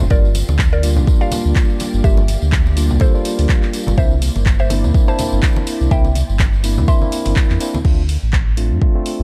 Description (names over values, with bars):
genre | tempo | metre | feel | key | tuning
deep house | 124 BPM | 4/4 | swing 56% on 16ths | unclear | A4 = 439 Hz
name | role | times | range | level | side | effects
mallet-like synth pluck | melody | 0.0-7.8 s | G4 to C6 | -29 LUFS | equal | chorus, cassette tape, tape echo
soft string machine | sustained chords | 0.0-7.8 s | Bb3 to D5 | -33 LUFS | equal | ensemble chorus, sidechain pumping
tine electric piano | stabs | 0.0-9.2 s | G3 to F4 | -25 LUFS | equal | sidechain pumping, delay
sub bass with octave | bass | 0.0-9.2 s | D1 to G2 | -19 LUFS | equal | sidechain pumping
congas | percussion | 0.0-7.8 s | none | -28 LUFS | equal | none
tambourine | percussion | 0.0-7.8 s | none | -36 LUFS | equal | none
electronic kick drum | drums | 0.1-8.9 s | none | -17 LUFS | equal | none
deep house drum kit | drums | 0.3-9.2 s | crash cymbal, handclaps, hi-hat | -28 LUFS | equal | none
room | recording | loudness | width
digital ambience | dark, warm production | -16 LUFS | mono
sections
0.0-7.8 A section; 7.8-9.2 B section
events
drop 0.0-7.8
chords
0.1 Gm7; 4.0 C9; 7.8 Dm7